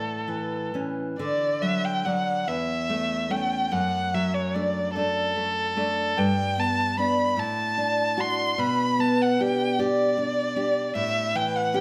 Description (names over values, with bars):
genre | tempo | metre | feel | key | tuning
romantic duo for violin and classical guitar | 43-52 BPM (dotted quarters) | 6/8 | rubato | D major | A4 = 441 Hz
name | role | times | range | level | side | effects
rich violin | melody | 0.0-11.8 s | A4 to C6 | -28 LUFS | equal | none
nylon-string guitar | accompaniment | 0.0-11.8 s | E2 to G4 | -28 LUFS | equal | none
room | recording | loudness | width
moderate recital hall reverb, RT60 1.4 s | none | -25 LUFS | mono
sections
0.0-1.2 A section; 1.2-11.8 A section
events
none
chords
0.0 A; 1.2 D; 2.5 A/E; 3.7 D/F#; 6.2 G; 7.4 D/A; 8.6 G/B; 11.0 A7(no3)